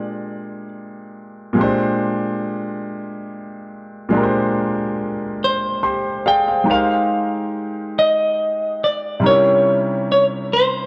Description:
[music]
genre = R&B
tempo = 47 BPM (dotted quarters)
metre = 6/8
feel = straight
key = unclear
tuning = A4 = 445 Hz
[part]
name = semi-hollow electric guitar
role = melody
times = 0.0-0.7, 5.4-10.9 s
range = C5 to G5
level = -19 LUFS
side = equal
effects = spring reverb
[part]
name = clear grand piano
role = accompaniment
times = 0.0-10.9 s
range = Bb2 to C6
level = -23 LUFS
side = equal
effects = none
[sound]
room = light reverb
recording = dry, close 1970s-style studio recording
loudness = -19 LUFS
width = mono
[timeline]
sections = 0.0-1.6 A section; 1.6-6.7 B section; 6.7-10.9 C section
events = grand piano fill 5.4-6.7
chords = 0.0 Bb13; 6.7 Abmaj9; 9.2 C7b9

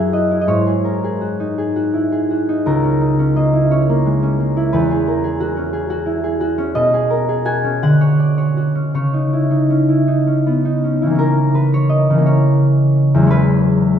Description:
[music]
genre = classical, solo harp piece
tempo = 52-61 BPM (dotted quarters)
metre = 6/8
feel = rubato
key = C# dorian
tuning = A4 = 440 Hz
[part]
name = concert harp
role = solo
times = 0.0-14.0 s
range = C#2 to G#5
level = -14 LUFS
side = equal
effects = none
[sound]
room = wet church reverb, RT60 2.7 s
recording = minimal, uncompressed stereo recording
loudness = -14 LUFS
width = side -8 dB against mid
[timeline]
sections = 0.0-11.2 A section; 11.2-14.0 A section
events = none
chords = 0.5 G#7sus4; 2.7 C#m6; 4.7 E69; 6.8 B69; 7.8 Dmaj7; 9.0 C#madd9; 11.2 C#m6; 13.3 E69

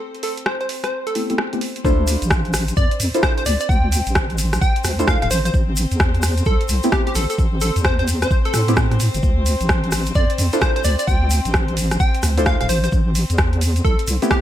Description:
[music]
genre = UK garage, two-step garage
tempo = 130 BPM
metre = 4/4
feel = swing 63% on 16ths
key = D minor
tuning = A4 = 440 Hz
[part]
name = warm chamber violin section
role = sustained chords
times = 0.0-14.4 s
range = C4 to C5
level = -31 LUFS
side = left 4 dB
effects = sidechain pumping
[part]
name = punchy analog drum machine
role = drums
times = 0.1-14.4 s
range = hi-hat, rim click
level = -24 LUFS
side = right 1 dB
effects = overdrive
[part]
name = plucky unison lead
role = melody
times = 0.2-14.4 s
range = G4 to G5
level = -24 LUFS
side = equal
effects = cassette tape, digital delay
[part]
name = deep mellow chord stab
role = stabs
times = 1.2-14.4 s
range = A3 to C5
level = -22 LUFS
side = equal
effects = wide subtle chorus, cassette tape, digital delay
[part]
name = deep soft wobble bass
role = bass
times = 1.8-14.2 s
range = D1 to A2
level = -19 LUFS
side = equal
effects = chorus, sidechain pumping
[part]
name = electronic kick drum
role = drums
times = 1.8-14.4 s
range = none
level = -19 LUFS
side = equal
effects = none
[part]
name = tube shaker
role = percussion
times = 1.9-14.4 s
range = none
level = -30 LUFS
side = left 4 dB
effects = none
[sound]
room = little or no reverb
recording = none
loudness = -16 LUFS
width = side -12 dB against mid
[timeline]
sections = 0.0-1.8 A section; 1.8-14.4 B section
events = drop 1.8-14.4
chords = 0.0 Am9; 1.8 Dm9; 5.3 Am9; 9.2 Dm9; 12.7 Am9

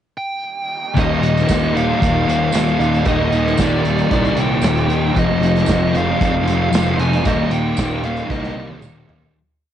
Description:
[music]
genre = rock, shoegaze and dream pop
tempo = 114 BPM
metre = 4/4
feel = straight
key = Eb major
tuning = A4 = 440 Hz
[part]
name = fuzz lead guitar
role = melody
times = 0.2-8.8 s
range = D5 to Ab5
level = -23 LUFS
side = right 2 dB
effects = distortion, cassette tape, tape echo
[part]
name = crunchy overdriven guitar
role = riff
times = 0.9-9.3 s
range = Eb2 to Eb4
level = -22 LUFS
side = right 11 dB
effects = reverse reverb, cassette tape
[part]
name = thick fuzz guitar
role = riff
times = 0.9-9.3 s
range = Eb2 to F3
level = -19 LUFS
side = left 5 dB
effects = distortion, analog chorus, cassette tape
[part]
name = fuzz picked electric bass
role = bass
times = 1.0-9.3 s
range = Eb1 to Eb2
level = -22 LUFS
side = equal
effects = overdrive, transformer saturation
[part]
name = loose indie drum kit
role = drums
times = 1.0-9.3 s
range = hi-hat, kick drum, snare drum, toms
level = -22 LUFS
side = right 1 dB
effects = cassette tape
[part]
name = tambourine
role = percussion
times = 1.5-8.9 s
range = none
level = -33 LUFS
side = right 15 dB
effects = none
[sound]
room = small room ambience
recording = home recording on cassette, nothing above 10.8 kHz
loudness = -15 LUFS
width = side -10 dB against mid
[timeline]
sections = 0.0-1.0 pickup bar; 1.0-9.4 A section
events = fade-out 7.2-9.4; drum fill 8.3-9.4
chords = 0.0 N.C.; 1.0 Eb; 5.2 Fm7; 7.2 Eb

